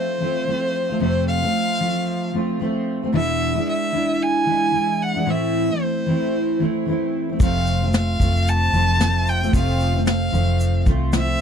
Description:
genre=acoustic pop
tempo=113 BPM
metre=4/4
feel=swing 60% on 16ths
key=F major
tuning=A4 = 440 Hz
part: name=clear violin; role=melody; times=0.0-11.4 s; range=C5 to A5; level=-23 LUFS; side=equal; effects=none
part: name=fingerpicked steel-string acoustic guitar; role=accompaniment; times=0.0-11.4 s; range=E2 to F4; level=-21 LUFS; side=equal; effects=double-tracked left and right
part: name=vintage muted fingered electric bass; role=bass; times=7.4-11.4 s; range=F1 to C2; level=-20 LUFS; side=equal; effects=none
part: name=soft brush drum kit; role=drums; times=7.4-11.4 s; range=kick drum, shaker, snare drum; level=-20 LUFS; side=left 1 dB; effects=none
room=light reverb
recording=dry, close 1970s-style studio recording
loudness=-18 LUFS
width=side -8 dB against mid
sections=0.0-11.4 A section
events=none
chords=0.0 F; 3.1 E7; 5.3 Am; 7.4 F

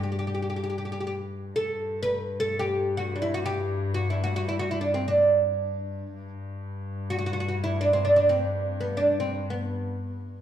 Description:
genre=Turkish makam ensemble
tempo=free time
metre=none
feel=none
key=G makam rast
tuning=A4 = 440 Hz
part: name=oud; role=melody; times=0.0-10.4 s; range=B3 to B4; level=-25 LUFS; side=right 2 dB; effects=none
part: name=warm chamber cello section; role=drone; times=0.0-10.4 s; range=G2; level=-31 LUFS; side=left 2 dB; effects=none
room=wet large studio reverb, RT60 1.2 s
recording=band playing live in one room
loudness=-24 LUFS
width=side -10 dB against mid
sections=0.0-10.4 A section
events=none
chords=none

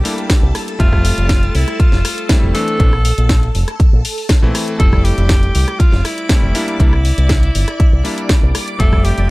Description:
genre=nu-disco, nu disco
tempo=120 BPM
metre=4/4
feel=straight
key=F major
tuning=A4 = 439 Hz
part: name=breathy tenor saxophone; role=melody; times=0.0-9.3 s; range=E4 to A4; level=-23 LUFS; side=equal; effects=tape echo
part: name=clear electric grand piano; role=accompaniment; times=0.0-9.3 s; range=E3 to E5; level=-22 LUFS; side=left 1 dB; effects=sidechain pumping, slapback echo
part: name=string machine, full ensemble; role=sustained chords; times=0.0-9.3 s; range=A4 to D6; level=-27 LUFS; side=equal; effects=phaser, ensemble chorus, sidechain pumping
part: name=house drum kit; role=drums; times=0.1-9.3 s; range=hi-hat, rim click, snare drum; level=-21 LUFS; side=left 1 dB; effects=none
part: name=electronic kick drum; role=drums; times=0.3-9.0 s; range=none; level=-12 LUFS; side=equal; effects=none
part: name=fingered electric bass with an envelope filter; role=bass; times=0.4-9.3 s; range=F1 to C2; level=-15 LUFS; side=equal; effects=none
room=little or no reverb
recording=none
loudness=-11 LUFS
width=side -21 dB against mid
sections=0.0-9.3 A section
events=none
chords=0.0 C7 (rootless); 0.8 Fmaj7; 2.5 Bbmaj9#11; 4.8 Fmaj7; 6.5 C7; 8.8 Fmaj7

